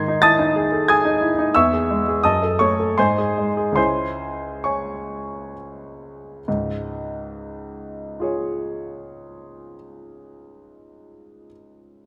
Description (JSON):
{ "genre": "classical, romantic character piece for solo piano", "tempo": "64-95 BPM", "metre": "3/4", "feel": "rubato", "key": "C# minor", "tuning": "A4 = 439 Hz", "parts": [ { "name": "clear concert grand piano", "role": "solo", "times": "0.0-12.1 s", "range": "C#2 to B#6", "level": "-21 LUFS", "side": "equal", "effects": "none" } ], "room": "moderate scoring stage reverb, RT60 1.9 s", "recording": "none", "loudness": "-20 LUFS", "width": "mono", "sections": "0.0-6.5 A section; 6.5-11.7 B section", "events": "slowing down 0.5-6.5", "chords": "0.0 G#; 1.5 C#m/E; 2.2 D#dim/F#; 3.0 G#; 3.8 C#m; 6.5 C#", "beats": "0.23 0.87 | 1.54 2.24 2.97 | 3.77 4.63 5.55 | 6.46 7.32 8.19 | 9.04 9.90 10.78" }